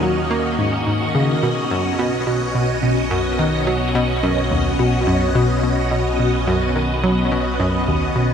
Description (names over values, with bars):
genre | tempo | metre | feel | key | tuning
ambient, sequencer-driven space music | 107 BPM | 4/4 | straight | unclear | A4 = 441 Hz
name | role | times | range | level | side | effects
phased string machine | sustained chords | 0.0-8.3 s | B2 to Eb5 | -20 LUFS | equal | ensemble chorus, phaser
analog pluck | riff | 0.0-8.3 s | D#2 to Bb3 | -20 LUFS | equal | chorus, ping-pong delay
round analog bass | bass | 0.0-8.3 s | B1 to Eb2 | -27 LUFS | equal | none
room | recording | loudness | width
wet huge ambient reverb, RT60 7.2 s | none | -16 LUFS | side -8 dB against mid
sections
0.0-8.3 A section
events
none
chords
0.0 Ebm7; 1.4 Badd9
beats
0.31 0.87 | 1.43 1.99 2.55 3.11 | 3.67 4.23 4.79 5.35 | 5.91 6.47 7.04 7.60 | 8.16